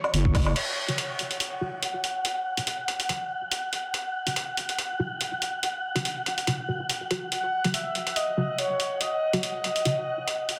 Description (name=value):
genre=deep dubstep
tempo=142 BPM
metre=4/4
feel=swing 55% on 16ths, half-time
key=unclear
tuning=A4 = 443 Hz
part: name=breathy flute-like synth lead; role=melody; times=0.0-0.1, 7.3-10.4 s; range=C#5 to F#5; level=-32 LUFS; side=equal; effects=subtle chorus, dub echo
part: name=trip hop sampler-style drum kit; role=drums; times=0.0-10.6 s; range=crash cymbal, hi-hat, woodblock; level=-31 LUFS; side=equal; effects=none
part: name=wind-like tuned noise texture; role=texture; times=0.0-10.6 s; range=C#5 to F#5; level=-35 LUFS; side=equal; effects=built-in reverb
part: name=wobble bass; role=bass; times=0.1-0.5 s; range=F#1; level=-26 LUFS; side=equal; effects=chorus
part: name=filtered dub chord stab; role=stabs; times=0.9-9.9 s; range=C#3 to F#4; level=-35 LUFS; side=equal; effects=phaser, subtle chorus, dub echo
room=wet echo chamber reverb, RT60 1.2 s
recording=dense, heavily limited modern master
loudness=-28 LUFS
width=mono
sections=0.6-10.6 A section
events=filter sweep on synth stab 0.6-10.6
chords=0.0 F#5